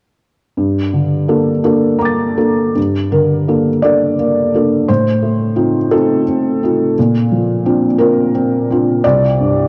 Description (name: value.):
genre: neoclassical minimalist piano.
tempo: 57 BPM (dotted quarters).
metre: 6/8.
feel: rubato.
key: G minor.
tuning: A4 = 443 Hz.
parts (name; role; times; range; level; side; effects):
felt-muted upright piano; solo; 0.6-9.7 s; C2 to A6; -14 LUFS; equal; cassette tape.
room: moderate lush hall reverb, RT60 2.6 s.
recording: home recording on cassette.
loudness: -14 LUFS.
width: mono.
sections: 0.6-2.8 A section; 2.8-9.7 B section.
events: none.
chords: 0.6 Gmadd9; 4.9 F7/A; 7.0 Bbadd9; 9.0 C5.